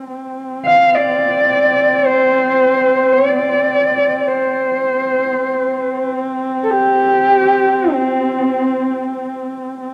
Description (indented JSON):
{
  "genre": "mongolian traditional, Mongolian folk",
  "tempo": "free time",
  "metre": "none",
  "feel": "none",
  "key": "unclear",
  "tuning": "A4 = 440 Hz",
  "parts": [
    { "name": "warm horsehead fiddle", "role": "drone", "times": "0.0-9.9 s", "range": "C4", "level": "-24 LUFS", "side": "equal", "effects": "cassette tape" },
    { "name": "dark horsehead fiddle", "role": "melody", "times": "0.7-9.3 s", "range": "C4 to F5", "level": "-16 LUFS", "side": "equal", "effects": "cassette tape" }
  ],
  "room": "moderate lush hall reverb, RT60 3.0 s",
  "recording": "home recording on cassette",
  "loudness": "-15 LUFS",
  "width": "mono",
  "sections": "0.1-9.8 A section",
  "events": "none",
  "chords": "none",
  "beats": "free time"
}